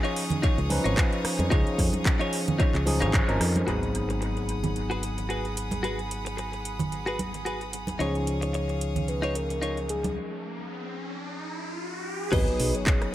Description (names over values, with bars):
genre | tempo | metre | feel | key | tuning
nu-disco, nu disco | 111 BPM | 4/4 | swing 55% on 16ths | G# dorian | A4 = 440 Hz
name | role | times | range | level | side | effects
overdriven tine electric piano | accompaniment | 0.0-13.1 s | E#3 to B4 | -32 LUFS | left 1 dB | dub echo
bright chamber string section | sustained chords | 0.0-13.1 s | G#4 to D#6 | -37 LUFS | right 1 dB | sidechain pumping
direct-recorded clean electric guitar | riff | 0.0-13.1 s | D#4 to D#5 | -33 LUFS | left 2 dB | wide subtle chorus, low-pass filter, dub echo
house drum kit | drums | 0.0-13.1 s | crash cymbal, handclaps, hi-hat, rim click | -33 LUFS | right 1 dB | dub echo
congas | percussion | 0.3-10.1 s | none | -33 LUFS | right 2 dB | dub echo
fingered electric bass | bass | 0.4-12.7 s | G#1 to E#2 | -30 LUFS | equal | sidechain pumping
electronic kick drum | drums | 0.4-3.3, 12.3-13.0 s | none | -24 LUFS | equal | none
sub drop and riser | sound effects | 3.7-13.1 s | none | -37 LUFS | equal | none
soft octave-layered synth lead | melody | 8.0-13.1 s | G#4 to C#5 | -34 LUFS | equal | chorus, cassette tape, dub echo
room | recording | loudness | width
light reverb | echo-heavy mix | -25 LUFS | side -13 dB against mid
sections
0.0-3.7 A section; 3.7-12.3 B section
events
band accent 3.1; impact 3.7-5.8, 12.3-13.1; riser 9.8-12.3; break 10.2-12.3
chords
0.0 C#add9; 3.7 G#m7; 8.0 C#add9; 12.3 G#m7